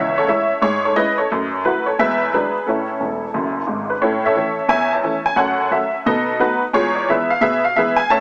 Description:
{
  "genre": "jazz, stride piano",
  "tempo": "176 BPM",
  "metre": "4/4",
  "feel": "swing 64% on 8ths",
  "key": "A major",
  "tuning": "A4 = 440 Hz",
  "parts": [
    { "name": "honky-tonk upright piano", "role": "solo", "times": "0.0-8.2 s", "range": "E1 to A5", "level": "-18 LUFS", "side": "equal", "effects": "tape echo" }
  ],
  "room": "wet small room reverb, RT60 0.5 s",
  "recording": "small speaker sound",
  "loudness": "-18 LUFS",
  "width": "mono",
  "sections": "0.0-4.0 A section; 4.0-8.2 B section",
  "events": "honky-tonk piano fill 3.0-4.0",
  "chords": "0.0 C#m; 1.3 F#m7; 2.0 E9; 2.7 A; 5.4 F#m; 6.1 B7; 6.7 E"
}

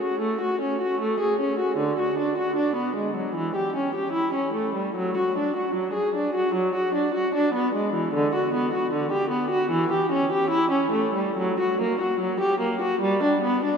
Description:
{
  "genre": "classical, baroque-style suite movement for unaccompanied viola",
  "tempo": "76 BPM",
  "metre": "4/4",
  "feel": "rubato",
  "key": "B minor from 8.1 s",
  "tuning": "A4 = 440 Hz",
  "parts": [
    { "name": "warm viola", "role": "solo", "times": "0.0-13.8 s", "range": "D3 to G#4", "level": "-22 LUFS", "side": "equal", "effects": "none" }
  ],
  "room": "wet cathedral reverb, RT60 4.5 s",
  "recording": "none",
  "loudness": "-22 LUFS",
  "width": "side -6 dB against mid",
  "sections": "0.0-13.8 A section",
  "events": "none",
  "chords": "none"
}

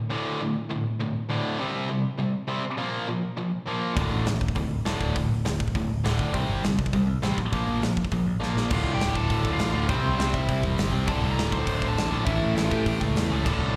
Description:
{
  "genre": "punk rock",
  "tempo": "202 BPM",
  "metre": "4/4",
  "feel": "straight",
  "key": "D minor",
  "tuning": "A4 = 441 Hz",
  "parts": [
    { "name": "tight distorted guitar", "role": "riff", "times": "0.1-13.8 s", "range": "D2 to C4", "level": "-30 LUFS", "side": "equal", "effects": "distortion, slapback echo" },
    { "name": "tight distorted guitar", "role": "riff", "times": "0.1-13.8 s", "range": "D2 to C4", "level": "-36 LUFS", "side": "equal", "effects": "none" },
    { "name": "modern bright picked electric bass", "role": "bass", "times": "4.0-13.7 s", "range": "D1 to A2", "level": "-30 LUFS", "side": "equal", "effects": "none" },
    { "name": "big rock drum kit", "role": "drums", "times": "4.0-13.5 s", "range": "crash cymbal, hi-hat, kick drum, snare drum", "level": "-32 LUFS", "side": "equal", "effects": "none" },
    { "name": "biting lead guitar", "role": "melody", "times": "8.7-13.7 s", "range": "C4 to C6", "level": "-34 LUFS", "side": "equal", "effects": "overdrive, tape echo" },
    { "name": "raw garage guitar", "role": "riff", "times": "8.7-13.8 s", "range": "D2 to C4", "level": "-39 LUFS", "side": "equal", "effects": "none" }
  ],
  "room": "little or no reverb",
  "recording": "live gig heard through the venue's PA, recital hall reverb",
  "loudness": "-26 LUFS",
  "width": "mono",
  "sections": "0.0-8.7 A section; 8.7-13.8 B section",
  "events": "drum fill 8.4",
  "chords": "0.0 D5; 1.6 C5; 2.6 Bb5; 4.0 D5; 6.3 C5; 7.4 Bb5; 8.7 Dm; 9.9 C; 11.1 D5; 12.3 A"
}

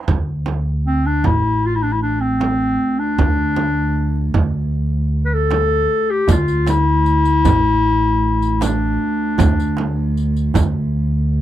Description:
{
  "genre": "Turkish makam ensemble",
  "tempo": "77 BPM",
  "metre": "4/4",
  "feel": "straight",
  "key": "D makam huseyni",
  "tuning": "A4 = 440 Hz",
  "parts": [
    { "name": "upright bass", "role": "bass", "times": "0.1-11.4 s", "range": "A1 to D2", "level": "-19 LUFS", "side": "equal", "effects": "none" },
    { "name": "dark cello", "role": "drone", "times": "0.1-11.4 s", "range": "D2", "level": "-26 LUFS", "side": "right 3 dB", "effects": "stereo widening" },
    { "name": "darbuka", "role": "percussion", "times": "0.1-10.7 s", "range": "none", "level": "-23 LUFS", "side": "right 2 dB", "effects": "none" },
    { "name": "frame drum", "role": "percussion", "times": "0.1-10.7 s", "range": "none", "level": "-20 LUFS", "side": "right 4 dB", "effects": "none" },
    { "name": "mellow clarinet", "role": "melody", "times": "0.9-10.3 s", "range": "C4 to B4-29c", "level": "-18 LUFS", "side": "left 2 dB", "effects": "none" },
    { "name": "riq", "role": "percussion", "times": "6.3-10.7 s", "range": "none", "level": "-28 LUFS", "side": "left 11 dB", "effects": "none" }
  ],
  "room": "little or no reverb",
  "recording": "dry, close 1970s-style studio recording",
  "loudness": "-15 LUFS",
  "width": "side -12 dB against mid",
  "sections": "0.1-11.4 A section",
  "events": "none",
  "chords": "none"
}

